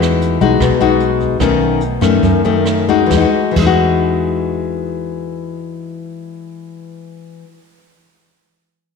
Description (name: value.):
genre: bossa nova.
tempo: 132-155 BPM.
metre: 4/4.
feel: straight.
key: E major.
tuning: A4 = 443 Hz.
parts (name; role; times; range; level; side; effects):
nylon-string guitar; accompaniment; 0.0-7.6 s; F#2 to F#4; -15 LUFS; left 6 dB; none.
fingered electric bass; bass; 0.0-7.4 s; B1 to F#2; -18 LUFS; right 3 dB; none.
jazz brush drum kit; drums; 0.0-3.7 s; crash cymbal, hi-hat, kick drum, rim click, snare drum; -24 LUFS; right 7 dB; none.
room: wet echo chamber reverb, RT60 1.9 s, small room ambience.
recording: 1960s-style stereo with parts hard left and right.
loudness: -12 LUFS.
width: side -5 dB against mid.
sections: 0.0-3.1 A section; 3.1-6.7 B section.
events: slowing down 0.0-3.1.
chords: 0.0 Emaj9; 1.4 B9; 3.1 Emaj9.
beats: 0.22 0.61 1.00 | 1.40 1.81 2.23 2.67 | 3.11 3.56 4.02 4.47 | 4.92 5.38 5.83 6.29.